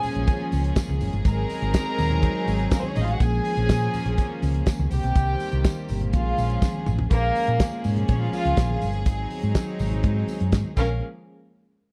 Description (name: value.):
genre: disco.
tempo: 123 BPM.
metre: 4/4.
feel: straight.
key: Bb minor.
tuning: A4 = 440 Hz.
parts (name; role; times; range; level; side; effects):
warm studio violin section; second line; 0.0-11.0 s; Bb3 to Bb5; -31 LUFS; equal; none.
clear studio string section; sustained chords; 0.0-11.0 s; Eb3 to Ab4; -32 LUFS; equal; none.
damped 70s drum kit; drums; 0.0-10.9 s; crash cymbal, hi-hat, kick drum, snare drum, toms; -23 LUFS; equal; none.
congas; percussion; 0.0-11.0 s; none; -38 LUFS; equal; none.
tambourine; percussion; 0.0-11.0 s; none; -50 LUFS; equal; none.
hollow-body short-scale fingered electric bass; bass; 0.2-11.0 s; Gb1 to Bb2; -26 LUFS; equal; none.
room: small room ambience.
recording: dry, close 1970s-style studio recording.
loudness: -24 LUFS.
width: mono.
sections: 0.0-7.1 A section; 7.1-11.0 B section.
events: drum fill 6.6-7.1.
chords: 0.0 Bbm7; 1.2 Ab7; 3.2 Bbm7; 4.9 Cm7; 6.1 Bbm7; 9.1 Ab7; 10.8 Bbm7; 11.0 N.C..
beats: 0.27 0.76 | 1.25 1.74 2.22 2.71 | 3.20 3.69 4.18 4.67 | 5.15 5.64 6.13 6.62 | 7.11 7.60 8.09 8.57 | 9.06 9.55 10.04 10.53.